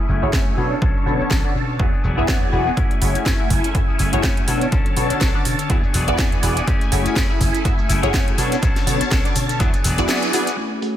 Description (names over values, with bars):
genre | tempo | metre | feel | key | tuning
filtered disco house | 123 BPM | 4/4 | swing 56% on 16ths | F# minor | A4 = 439 Hz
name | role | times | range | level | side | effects
phased string machine | sustained chords | 0.0-11.0 s | D3 to A5 | -26 LUFS | equal | ensemble chorus, phaser, sidechain pumping, low-pass filter
electric guitar with an envelope filter | riff | 0.0-11.0 s | F#3 to A4 | -27 LUFS | left 3 dB | vintage 12-bit sampler grit, sidechain pumping, low-pass filter
slap bass with an envelope filter | bass | 0.1-10.0 s | E1 to B2 | -23 LUFS | equal | sidechain pumping, low-pass filter
maracas | percussion | 0.1-10.6 s | none | -35 LUFS | left 5 dB | sidechain pumping on perc, low-pass filter on perc
funky polysynth comp | accompaniment | 0.2-11.0 s | D3 to F#5 | -24 LUFS | left 1 dB | chorus, phaser, sidechain pumping, low-pass filter
electronic kick drum | drums | 0.3-9.7 s | none | -20 LUFS | equal | small room ambience
house drum kit | drums | 0.3-10.9 s | hi-hat, snare drum | -26 LUFS | right 1 dB | low-pass filter on snare, small room ambience, sidechain pumping on hats, low-pass filter on hats
room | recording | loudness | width
light reverb | faint mains hum | -16 LUFS | side -11 dB against mid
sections
0.0-10.6 A section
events
filter sweep 0.0-10.6; band accent 10.1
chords
0.0 F#m9; 0.6 Bm9; 1.8 E9; 2.8 F#m9; 4.5 Bm9; 5.7 E9; 6.7 F#m9; 8.4 Bm9; 9.6 E9